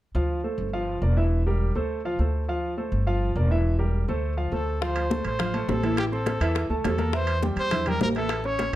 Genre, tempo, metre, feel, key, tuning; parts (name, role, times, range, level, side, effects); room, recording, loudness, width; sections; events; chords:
latin, salsa; 206 BPM; 4/4; straight; D minor; A4 = 441 Hz
upright bass; bass; 0.1-8.8 s; E1 to E2; -26 LUFS; equal
clear concert grand piano; accompaniment; 0.2-8.8 s; E3 to F6; -28 LUFS; equal
warm trumpet; melody; 4.5-8.7 s; G4 to C#5; -29 LUFS; equal
bongos; percussion; 4.8-8.7 s; -34 LUFS; left 8 dB
congas; percussion; 4.8-8.7 s; -30 LUFS; left 1 dB
timbales; percussion; 5.0-8.8 s; -34 LUFS; right 4 dB
light reverb; dark, warm production; -23 LUFS; side -14 dB against mid
0.2-4.8 A section; 4.8-8.8 B section
break 4.2-4.8
0.2 Dm7; 0.7 Gm7; 1.3 Em7b5; 1.9 Dm7; 3.1 Gm7; 3.6 Em7b5; 4.2 Dm7; 6.0 Am; 7.1 Edim